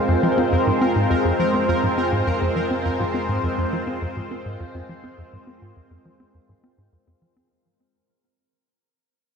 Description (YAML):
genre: ambient, sequencer-driven space music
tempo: 103 BPM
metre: 4/4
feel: straight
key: F minor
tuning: A4 = 439 Hz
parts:
  - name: lush unison pad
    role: sustained chords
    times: 0.0-7.5 s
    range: Ab3 to C5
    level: -22 LUFS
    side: equal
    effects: chorus, phaser
  - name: warbly dusty pluck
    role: arpeggios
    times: 0.0-7.5 s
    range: F4 to Ab5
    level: -34 LUFS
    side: moving between left 5 dB and right 3 dB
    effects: none
  - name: analog drone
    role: bass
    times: 0.3-7.5 s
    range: F2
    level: -38 LUFS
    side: equal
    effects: none
  - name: pulsing gated texture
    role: texture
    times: 0.0-7.5 s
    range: Bb4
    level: -29 LUFS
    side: right 2 dB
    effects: chorus, built-in reverb
  - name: tight sequencer bass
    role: riff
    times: 0.1-7.5 s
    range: F2 to C4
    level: -24 LUFS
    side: equal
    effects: analog delay
room: wet plate reverb, RT60 2.5 s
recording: none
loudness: -19 LUFS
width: side -6 dB against mid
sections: 0.0-7.5 A section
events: fade-out 0.0-7.5; filter sweep on analog synth bass 0.0-7.5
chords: 0.0 Fm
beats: | 0.52 1.10 1.69 2.27 | 2.85 3.43 4.02 4.60 | 5.18 5.76 6.35 6.93